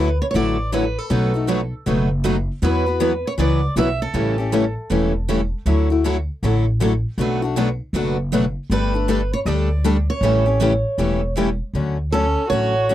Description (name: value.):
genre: acoustic string swing (jazz manouche).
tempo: 158 BPM.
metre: 4/4.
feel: swing 63% on 8ths.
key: D major.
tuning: A4 = 441 Hz.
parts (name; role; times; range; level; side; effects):
picked steel-string acoustic guitar; melody; 0.0-4.7, 8.7-12.9 s; A4 to E5; -23 LUFS; right 2 dB; none.
picked steel-string acoustic guitar; accompaniment; 0.0-12.9 s; B2 to B4; -21 LUFS; left 5 dB; none.
picked steel-string acoustic guitar; accompaniment; 0.0-11.5 s; B2 to B4; -24 LUFS; right 8 dB; none.
upright bass; bass; 0.0-12.9 s; E1 to E2; -21 LUFS; equal; none.
warm violin; second line; 12.1-12.9 s; C#4 to F#4; -25 LUFS; right 5 dB; slapback echo.
room: little or no reverb.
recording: dry, close 1970s-style studio recording.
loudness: -17 LUFS.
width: side -12 dB against mid.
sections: 0.0-11.7 A section; 11.7-12.9 B section.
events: none.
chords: 0.0 Dadd9; 1.1 B7; 2.6 Esus2; 4.1 A7; 5.7 Dadd9; 7.2 Bm7; 8.7 Gsus2; 10.2 A7; 11.7 Dmaj7.